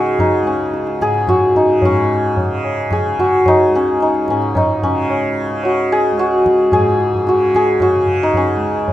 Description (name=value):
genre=indian classical, Hindustani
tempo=110 BPM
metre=3/4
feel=straight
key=unclear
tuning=A4 = 440 Hz
part: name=santur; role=melody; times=0.0-8.9 s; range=Db4 to Ab4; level=-14 LUFS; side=equal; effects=none
part: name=tanpura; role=drone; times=0.0-8.9 s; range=Db2 to Db3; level=-23 LUFS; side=right 1 dB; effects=none
part: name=tabla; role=percussion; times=0.1-8.9 s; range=none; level=-22 LUFS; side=equal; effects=none
room=moderate studio reverb, RT60 0.6 s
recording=rough home demo mix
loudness=-13 LUFS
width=side -13 dB against mid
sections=0.0-1.8 A section; 1.8-8.9 B section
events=none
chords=none